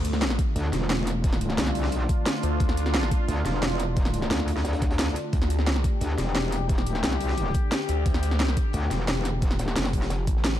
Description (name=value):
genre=dark technical drum and bass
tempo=176 BPM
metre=4/4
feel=straight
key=D minor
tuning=A4 = 441 Hz
part: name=sweeping resonant pad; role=sustained chords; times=0.0-10.6 s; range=D3 to G4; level=-31 LUFS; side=left 2 dB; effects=chorus, sidechain pumping
part: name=phased detuned saw bass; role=bass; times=0.0-0.4, 2.4-3.1, 5.3-5.8, 7.9-10.6 s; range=F1 to D2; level=-25 LUFS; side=equal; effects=phaser, overdrive, sidechain pumping
part: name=crunchy breakbeat drum kit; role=drums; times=0.0-10.6 s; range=hi-hat, snare drum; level=-39 LUFS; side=equal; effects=none
part: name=drum and bass drum kit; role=drums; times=0.0-10.5 s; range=hi-hat, snare drum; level=-29 LUFS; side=equal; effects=overdrive
part: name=electronic kick drum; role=drums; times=0.4-10.3 s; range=none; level=-24 LUFS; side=equal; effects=overdrive
part: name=metallic wobble bass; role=bass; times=0.6-10.1 s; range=E1 to D2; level=-27 LUFS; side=equal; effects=distortion, chorus
room=little or no reverb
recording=dark, warm production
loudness=-23 LUFS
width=side -12 dB against mid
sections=0.0-10.6 A section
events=kick drops out 10.4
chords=0.0 Dmadd9